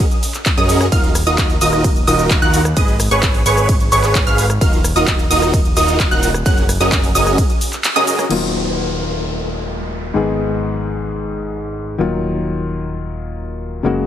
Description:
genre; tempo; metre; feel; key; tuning
EDM, festival progressive house; 130 BPM; 4/4; straight; Eb minor; A4 = 441 Hz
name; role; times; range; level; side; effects
wide unison pluck; arpeggios; 0.0-8.2 s; Db6 to Gb6; -20 LUFS; right 2 dB; sidechain pumping, tape echo
dense compressed supersaw; riff; 0.0-8.2 s; Db4 to Gb5; -18 LUFS; right 1 dB; sidechain pumping, low-pass filter, tape echo
fat analog bass; bass; 0.0-14.1 s; Eb1 to Gb2; -21 LUFS; equal; sidechain pumping
big-room dance drum kit; drums; 0.0-8.4 s; crash cymbal, handclaps, hi-hat, ride cymbal, rim click, shaker; -21 LUFS; equal; overdrive
electronic kick drum; drums; 0.0-7.5 s; none; -16 LUFS; equal; none
felt-muted upright piano; accompaniment; 8.3-14.1 s; Ab2 to Ab4; -20 LUFS; left 4 dB; sidechain pumping, tape echo
downlifter; sound effects; 8.3-12.0 s; none; -27 LUFS; equal; none
room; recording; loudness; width
light reverb; none; -14 LUFS; side -10 dB against mid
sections
0.0-8.3 A section; 8.3-14.1 B section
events
drop 0.0-8.3; band accent 7.8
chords
0.0 Gbadd9; 0.9 Ebmadd9; 2.8 Abm; 4.6 Ebmadd9; 6.5 Gbadd9; 8.3 Ebmadd9; 10.2 Abm; 12.0 Ebmadd9

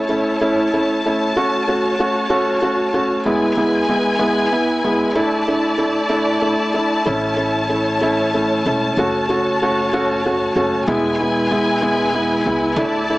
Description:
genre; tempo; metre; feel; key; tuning
pop; 63 BPM (dotted quarters); 6/8; straight; unclear; A4 = 436 Hz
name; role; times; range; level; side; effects
felt-muted upright piano; accompaniment; 0.0-13.2 s; G#3 to F#4; -17 LUFS; equal; none
dark studio string section; sustained chords; 0.0-13.2 s; E4 to A5; -20 LUFS; left 1 dB; none
upright bass; bass; 7.1-13.2 s; E1 to D2; -29 LUFS; equal; none
room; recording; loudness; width
wet echo chamber reverb, RT60 2.4 s; small speaker sound; -15 LUFS; side -18 dB against mid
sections
0.0-13.2 A section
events
none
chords
0.0 A; 1.4 F#m; 3.3 E; 5.2 Dsus2; 7.1 A; 9.0 F#m; 10.9 E

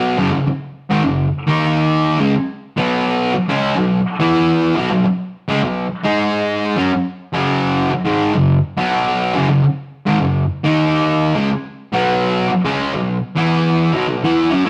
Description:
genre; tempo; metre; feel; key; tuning
rock; 105 BPM; 4/4; straight; unclear; A4 = 440 Hz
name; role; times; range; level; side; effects
fuzz guitar; solo; 0.0-14.7 s; F#2 to G#4; -17 LUFS; equal; distortion
room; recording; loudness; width
moderate stone room reverb, RT60 1.0 s; rough rehearsal-room recording, warm saturation; -17 LUFS; mono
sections
0.0-14.7 A section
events
none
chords
0.2 F#5; 1.5 D#5; 2.2 C#5; 2.8 B5; 4.2 E5; 4.8 B5; 6.1 G#5; 6.8 F#5; 8.8 B5; 9.4 F#5; 10.6 D#5; 11.4 C#5; 11.9 B5; 13.4 E5; 13.9 B5

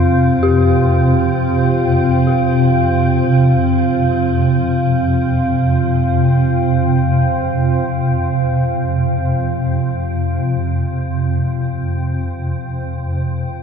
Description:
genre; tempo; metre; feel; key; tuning
dark ambient drone; free time; none; none; unclear; A4 = 440 Hz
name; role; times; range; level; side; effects
dark analog pad; sustained chords; 0.0-13.6 s; C4 to F5; -20 LUFS; equal; chorus
dark detuned synth bell; arpeggios; 0.0-13.6 s; G4; -23 LUFS; left 3 dB; chorus, ping-pong delay
swarming drone; drone; 0.0-13.6 s; F2 to C3; -15 LUFS; equal; built-in reverb
room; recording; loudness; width
wet cathedral reverb, RT60 5.4 s; in a vast, echoing space, nothing above 7.9 kHz; -14 LUFS; side -6 dB against mid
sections
0.0-13.6 A section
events
fade-out on analog synth pad 0.0-13.6; fade-out 7.8-13.6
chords
0.0 F5

